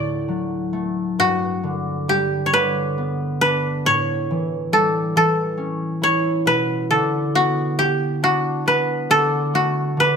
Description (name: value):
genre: celtic folk, Celtic slow air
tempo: 45 BPM (dotted quarters)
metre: 6/8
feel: rubato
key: A mixolydian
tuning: A4 = 437 Hz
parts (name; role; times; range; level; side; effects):
- koto; melody; 0.0-10.2 s; F#4 to D5; -19 LUFS; equal; none
- concert harp; accompaniment; 0.0-10.2 s; D2 to E4; -22 LUFS; equal; none
room: light reverb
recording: close, detailed microphones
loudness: -18 LUFS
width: side -6 dB against mid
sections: 0.0-10.2 A section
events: none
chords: 0.0 D; 1.2 G; 3.9 A7; 6.5 Bm; 9.1 D5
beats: | 1.20 2.54 | 3.86 5.16 | 6.46 7.78 | 9.09